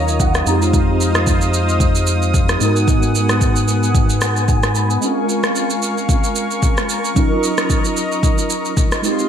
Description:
amapiano; 112 BPM; 4/4; swing 55% on 16ths; A4 = 442 Hz
mellow tine electric piano; accompaniment; 0.0-9.3 s; Gb3 to Cb6; -20 LUFS; right 2 dB; ensemble chorus
warm analog pad; sustained chords; 0.0-9.3 s; Ab3 to Eb6; -22 LUFS; left 2 dB; chorus, tremolo, sidechain pumping
round analog bass; bass; 0.0-5.0 s; Eb2 to Ab2; -18 LUFS; equal
deep house drum kit; drums; 0.1-9.3 s; kick drum, rim click, shaker; -18 LUFS; equal; gated reverb
moderate plate reverb, RT60 1.9 s, digital ambience; bright 1980s-style digital production; -14 LUFS; side -8 dB against mid
0.0-9.3 A section
tine electric piano fill 0.0-0.7, 3.9-5.0; break 5.0-6.1
0.5 Fm7; 2.6 Abm7; 5.0 Bbm7; 7.2 Ebm7

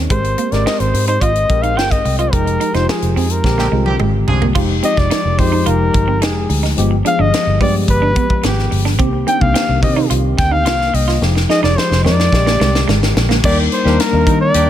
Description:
polished 1980s jazz-funk pop; 108 BPM; 4/4; straight; A4 = 438 Hz
tine electric piano; accompaniment; 0.0-14.7 s; D3 to Bb4; -19 LUFS; left 3 dB; lush chorus
semi-hollow electric guitar; riff; 0.0-13.4 s; Ab3 to F4; -23 LUFS; right 8 dB; lush chorus
vintage muted fingered electric bass; bass; 0.0-14.7 s; F1 to Eb3; -17 LUFS; equal
mellow flugelhorn; melody; 0.1-14.7 s; G4 to G5; -18 LUFS; left 1 dB
tight funk drum kit; drums; 0.1-14.7 s; crash cymbal, hi-hat, kick drum, snare drum, toms; -19 LUFS; equal; gated reverb
warm horn section; second line; 3.6-4.5, 13.4-14.7 s; D3 to Bb4; -24 LUFS; right 3 dB
small room ambience; -12 LUFS; side -11 dB against mid
0.0-4.6 A section; 4.6-13.4 B section; 13.4-14.7 C section
band accent 2.3-4.6; drum fill 3.4-4.6, 11.2-13.4
0.1 Abmaj9; 2.3 Fm9; 3.4 Bb13; 4.6 Fm9; 6.8 G7b9; 9.0 Cm7; 11.2 Fm9; 12.3 Bb13; 13.4 Ebmaj7

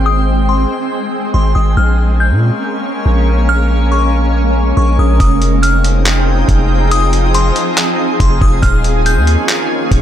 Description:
hip hop, atmospheric cloud-rap; 140 BPM; 4/4; half-time; F minor; A4 = 441 Hz
shimmering ambient pad; sustained chords; 0.0-10.0 s; Eb3 to G5; -16 LUFS; equal; chorus, built-in reverb, low-pass filter
long sustained 808-style bass; bass; 0.0-10.0 s; Eb1 to Bb2; -12 LUFS; equal
drifting glass-harmonics texture; texture; 0.0-10.0 s; Ab4 to Eb6; -26 LUFS; equal; chorus, built-in reverb
delicate synth tine bell; melody; 0.1-9.9 s; C6 to G6; -20 LUFS; left 3 dB; chorus, phaser, low-pass filter, tape echo
lo-fi sampler-style drum kit; drums; 5.2-10.0 s; handclaps, hi-hat, kick drum; -15 LUFS; equal
digital ambience; -10 LUFS; side -10 dB against mid
0.0-5.2 A section; 5.2-10.0 B section
0.0 Abmaj7; 1.8 Bbm7; 5.2 Fm7; 8.6 Eb9sus4

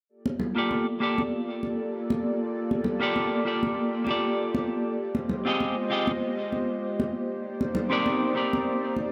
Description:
sunset chillout; 98 BPM; 4/4; swing 54% on 16ths; G minor; A4 = 440 Hz
airy breathy pad; sustained chords; 0.1-9.1 s; Ab3 to Eb5; -33 LUFS; equal; chorus
congas; percussion; 0.3-9.1 s; -33 LUFS; equal
clean electric guitar; accompaniment; 0.6-8.9 s; Bb3 to Eb5; -30 LUFS; equal; low-pass filter, digital delay
moderate plate reverb, RT60 2.7 s; -27 LUFS; mono
0.1-9.1 A section
0.1 Gm9; 5.0 Fm9; 7.1 Cm9

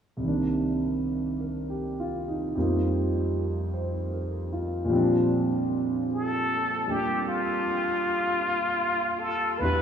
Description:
jazz ballad; 51 BPM; 4/4; swing 67% on 8ths; Bb major; A4 = 440 Hz
warm concert grand piano; accompaniment; 0.2-9.8 s; C2 to C5; -26 LUFS; right 1 dB; lush chorus
trumpet with plunger mute; melody; 6.1-9.8 s; F4 to B4; -25 LUFS; left 1 dB; analog delay
wet huge ambient reverb, RT60 7.7 s; dreamy mix soaked in reverb, small room reverb; -24 LUFS; side -8 dB against mid
0.2-4.9 A section; 4.9-9.8 B section
0.2 Cm9; 2.6 F7sus4; 4.9 Bb6

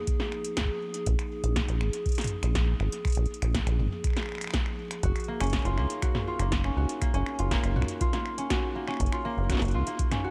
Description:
IDM; 121 BPM; 4/4; straight; Bb minor; A4 = 440 Hz
warbly tape-like pad; sustained chords; 0.0-10.3 s; F3 to Ab4; -40 LUFS; equal; chorus, built-in reverb
concert harp; arpeggios; 0.0-0.1, 5.0-10.3 s; Bb3 to Gb4; -34 LUFS; equal; delay
electro analog drum machine; drums; 0.1-10.2 s; finger snaps, hi-hat, snare drum, toms; -36 LUFS; equal; delay
electronic kick drum; drums; 0.1-10.1 s; -32 LUFS; equal
deep acid bass; bass; 1.1-9.8 s; Gb1 to Db2; -29 LUFS; equal
little or no reverb; -29 LUFS; mono
0.0-10.3 A section
0.0 Bb5; 5.0 Gbmaj7

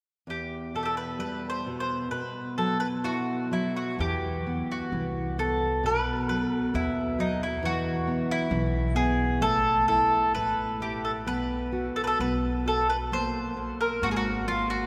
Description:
fado-style ballad; 65 BPM; 2/4; rubato; E harmonic minor; A4 = 440 Hz
mandolin; melody; 0.3-14.9 s; D#4 to C5; -30 LUFS; equal
nylon-string guitar; accompaniment; 0.3-14.9 s; E2 to F#4; -33 LUFS; equal
upright bass; bass; 4.0-14.9 s; G#1 to E2; -35 LUFS; equal
wet cathedral reverb, RT60 5.0 s; recorded in a church or concert hall; -28 LUFS; mono
0.3-4.0 A section; 4.0-14.9 B section
0.3 Em; 2.1 Bsus4; 4.0 E5; 5.8 B5; 7.6 E5; 9.4 A5; 11.3 B5; 13.1 G#9

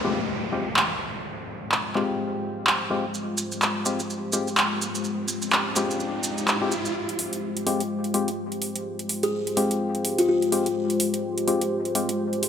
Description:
bass house; 126 BPM; 4/4; swing 58% on 16ths; F minor; A4 = 440 Hz
dark analog pad; sustained chords; 0.0-12.5 s; Ab3 to C5; -30 LUFS; left 1 dB; chorus
percussive organ stab; stabs; 0.0-12.1 s; Ab3 to G4; -28 LUFS; left 3 dB; chorus, dub echo
downlifter and riser; sound effects; 0.0-7.0 s; -33 LUFS; equal
big-room dance drum kit; drums; 0.8-12.5 s; handclaps, hi-hat; -25 LUFS; right 1 dB; overdrive, small room ambience
maracas; percussion; 3.1-6.9 s; -30 LUFS; right 4 dB
buzzing kalimba; melody; 9.2-10.4 s; F4 to Ab4; -26 LUFS; left 2 dB; dub echo
moderate lush hall reverb, RT60 2.0 s; -23 LUFS; side -8 dB against mid
0.0-7.0 A section; 7.0-12.5 B section
filter sweep on analog synth pad 0.0-7.0; riser 4.6-7.0; build-up 7.0-12.5
0.0 Fmadd9

